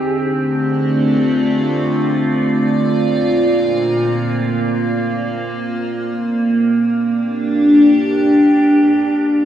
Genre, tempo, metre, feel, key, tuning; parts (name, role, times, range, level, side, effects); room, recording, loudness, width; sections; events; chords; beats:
ambient; free time; A4 = 440 Hz
evolving wavetable pad; solo; 0.0-9.4 s; Bb2 to D5; -13 LUFS; equal; phaser, built-in reverb, tape echo
wet cathedral reverb, RT60 6.2 s; worn, warbling old tape, cassette tape, warbly pitch drift, studio ambience; -13 LUFS; side -10 dB against mid
0.0-9.2 A section
0.0 Dm7; 2.9 Bbadd9; 6.0 Gm
free time